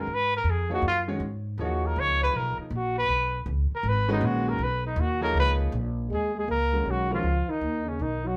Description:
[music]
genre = modal jazz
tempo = 159 BPM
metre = 4/4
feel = swing 65% on 8ths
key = G# dorian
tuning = A4 = 440 Hz
[part]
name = breathy trumpet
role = melody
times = 0.0-8.4 s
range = C#4 to C#5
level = -30 LUFS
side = equal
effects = none
[part]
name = warm concert grand piano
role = accompaniment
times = 0.0-7.2 s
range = D#3 to C#5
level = -34 LUFS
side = equal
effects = none
[part]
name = upright bass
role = bass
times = 0.0-8.4 s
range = G#1 to G#2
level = -30 LUFS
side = equal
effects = none
[part]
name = breathy trombone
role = second line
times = 6.1-8.4 s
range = C#3 to A#3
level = -32 LUFS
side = equal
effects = none
[sound]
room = moderate studio reverb, RT60 0.6 s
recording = band playing live in one room, faint mains hum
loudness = -27 LUFS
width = mono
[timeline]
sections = 0.0-6.1 A section; 6.1-8.4 B section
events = trumpet solo 0.0-6.1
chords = 0.0 G#m11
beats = | 0.08 0.45 0.83 1.21 | 1.58 1.96 2.34 2.71 | 3.09 3.47 3.84 4.22 | 4.60 4.97 5.35 5.73 | 6.10 6.48 6.86 7.24 | 7.62 8.00

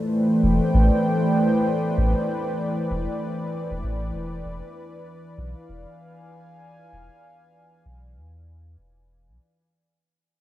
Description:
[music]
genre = ambient dub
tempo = 97 BPM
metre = 4/4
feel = swing 59% on 16ths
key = unclear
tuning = A4 = 440 Hz
[part]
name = warm analog pad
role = sustained chords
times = 0.0-9.4 s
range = E3 to G#5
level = -23 LUFS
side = equal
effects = chorus
[part]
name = soft dub sub bass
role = bass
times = 0.4-9.4 s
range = E1 to E2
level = -22 LUFS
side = equal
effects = tube saturation
[sound]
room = moderate small room ambience, RT60 0.5 s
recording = home recording on cassette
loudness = -20 LUFS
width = side -14 dB against mid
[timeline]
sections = 0.0-9.4 A section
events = fade-out 0.0-9.4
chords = 0.0 Am11; 4.5 E7b9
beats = 0.12 0.74 1.36 | 1.98 2.60 3.21 3.83 | 4.45 5.07 5.69 6.31 | 6.92 7.54 8.16 8.78

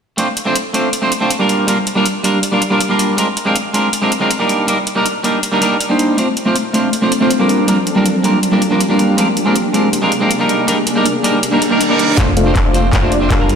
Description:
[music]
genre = future bass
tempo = 160 BPM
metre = 4/4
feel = half-time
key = F mixolydian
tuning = A4 = 442 Hz
[part]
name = clean electric guitar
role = accompaniment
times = 0.2-13.6 s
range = G3 to C5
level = -14 LUFS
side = right 1 dB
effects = wide subtle chorus, sidechain pumping, tape echo
[part]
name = pop drum kit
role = drums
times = 0.2-13.6 s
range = handclaps, hi-hat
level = -22 LUFS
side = equal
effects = high-pass filter on hats, high-pass filter on snare
[part]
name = shimmering ambient pad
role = sustained chords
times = 6.9-13.6 s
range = Eb3 to F5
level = -18 LUFS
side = left 1 dB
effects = chorus, built-in reverb, sidechain pumping
[part]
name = reverse cymbal and riser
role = sound effects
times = 11.6-13.6 s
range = none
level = -23 LUFS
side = right 5 dB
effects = none
[part]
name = supersaw stab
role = riff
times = 12.2-13.6 s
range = G3 to F5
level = -16 LUFS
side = left 2 dB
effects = sidechain pumping, low-pass filter, tape echo
[part]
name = wide detuned saw bass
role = bass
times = 12.2-13.6 s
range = F1 to G1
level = -17 LUFS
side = equal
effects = chorus, tube saturation, sidechain pumping
[part]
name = electronic kick drum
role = drums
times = 12.2-13.4 s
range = none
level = -15 LUFS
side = equal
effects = none
[sound]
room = moderate lush hall reverb, RT60 2.5 s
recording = played on a big sound system in a bare room, stone room reverb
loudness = -12 LUFS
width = side -7 dB against mid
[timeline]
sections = 0.2-12.2 A section; 12.2-13.6 B section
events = reverse cymbal 11.6-12.2; build-up 12.2-13.6; drum fill 12.2-13.6; filter sweep on supersaw synth 12.2-13.6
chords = 0.2 F6; 1.5 Gm7; 3.2 Bb9; 4.5 Ebmaj7; 6.2 F6; 7.5 Gm7; 9.2 Bb9; 10.5 Ebmaj7; 12.2 F6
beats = | 0.18 0.56 0.93 1.31 | 1.68 2.06 2.43 2.81 | 3.18 3.56 3.93 4.31 | 4.68 5.06 5.43 5.81 | 6.18 6.56 6.93 7.31 | 7.68 8.06 8.43 8.81 | 9.18 9.56 9.93 10.31 | 10.68 11.06 11.43 11.81 | 12.18 12.56 12.93 13.31

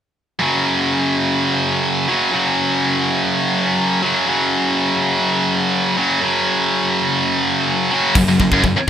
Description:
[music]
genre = heavy metal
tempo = 124 BPM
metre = 4/4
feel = straight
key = unclear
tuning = A4 = 438 Hz
[part]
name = heavy high-gain guitar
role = riff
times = 0.4-8.8 s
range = F#2 to F#3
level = -15 LUFS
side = equal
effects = distortion
[part]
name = fuzz picked electric bass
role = bass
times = 8.2-8.8 s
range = F#1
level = -21 LUFS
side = left 1 dB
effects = overdrive
[part]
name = tight metal drum kit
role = drums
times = 8.2-8.7 s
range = china cymbal, crash cymbal, kick drum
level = -18 LUFS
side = equal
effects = none
[sound]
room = small room ambience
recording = rough home demo mix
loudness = -15 LUFS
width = side -9 dB against mid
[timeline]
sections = 0.4-8.2 A section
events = none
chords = 0.4 F#5; 8.2 N.C.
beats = | 0.39 0.88 1.36 1.85 | 2.33 2.82 3.31 3.79 | 4.28 4.76 5.25 5.73 | 6.22 6.70 7.18 7.67 | 8.15 8.64

